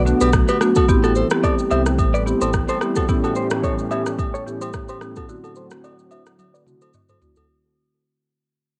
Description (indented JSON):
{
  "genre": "afrobeats",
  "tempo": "109 BPM",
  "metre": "4/4",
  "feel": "swing 55% on 16ths",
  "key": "A dorian",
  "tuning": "A4 = 440 Hz",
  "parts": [
    { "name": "warm analog pad", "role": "sustained chords", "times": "0.0-7.5 s", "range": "D3 to G4", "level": "-28 LUFS", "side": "equal", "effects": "chorus, sidechain pumping, low-pass filter, cassette tape" },
    { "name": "direct-recorded clean electric guitar", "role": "riff", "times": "0.0-7.5 s", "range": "F#4 to E5", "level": "-28 LUFS", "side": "equal", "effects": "low-pass filter, cassette tape, tape echo" },
    { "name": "sub bass with octave", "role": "bass", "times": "0.0-2.6 s", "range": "A1 to C2", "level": "-24 LUFS", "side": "equal", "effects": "none" },
    { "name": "marimba with medium mallets", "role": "accompaniment", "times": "0.1-7.5 s", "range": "A2 to G4", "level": "-25 LUFS", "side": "equal", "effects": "low-pass filter, cassette tape" },
    { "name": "afro-pop drum kit", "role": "drums", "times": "0.1-7.5 s", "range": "kick drum, rim click, shaker, toms", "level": "-24 LUFS", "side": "equal", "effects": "vintage 12-bit sampler grit, cassette tape" },
    { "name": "agogo bells and woodblock", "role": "percussion", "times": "0.2-7.5 s", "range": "none", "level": "-32 LUFS", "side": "equal", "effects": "none" }
  ],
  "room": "light reverb, digital ambience",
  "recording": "home recording on cassette",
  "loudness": "-19 LUFS",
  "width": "mono",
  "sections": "0.0-7.5 A section",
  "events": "fade-out 0.0-7.5; filter sweep 0.0-7.5; drum fill 6.4-7.5",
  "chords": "0.0 Bm7; 0.9 Am7; 3.1 A7; 5.3 D7"
}